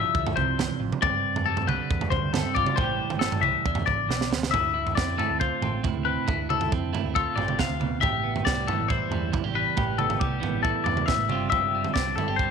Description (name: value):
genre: math rock and midwest emo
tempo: 137 BPM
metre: 4/4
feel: straight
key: unclear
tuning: A4 = 439 Hz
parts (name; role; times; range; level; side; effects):
- clean electric guitar; accompaniment; 0.0-12.5 s; E2 to G4; -30 LUFS; right 11 dB; vibrato effect
- twangy electric guitar; arpeggios; 0.0-12.5 s; G4 to F5; -26 LUFS; left 12 dB; phaser
- hollow-body short-scale picked electric bass; bass; 0.0-12.5 s; E1 to F2; -32 LUFS; equal; none
- crisp fusion drum kit; drums; 0.1-12.5 s; kick drum, snare drum, toms; -28 LUFS; right 4 dB; none
room: light reverb, small room ambience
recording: 1960s-style stereo with parts hard left and right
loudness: -23 LUFS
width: side -6 dB against mid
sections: 0.0-4.5 A section; 4.5-12.5 B section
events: drum fill 4.1-4.5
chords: 0.0 Fmaj7sus2; 1.0 G7sus4; 2.8 Am7; 3.7 E7; 4.5 Dm9; 8.0 Am11; 11.3 G7sus4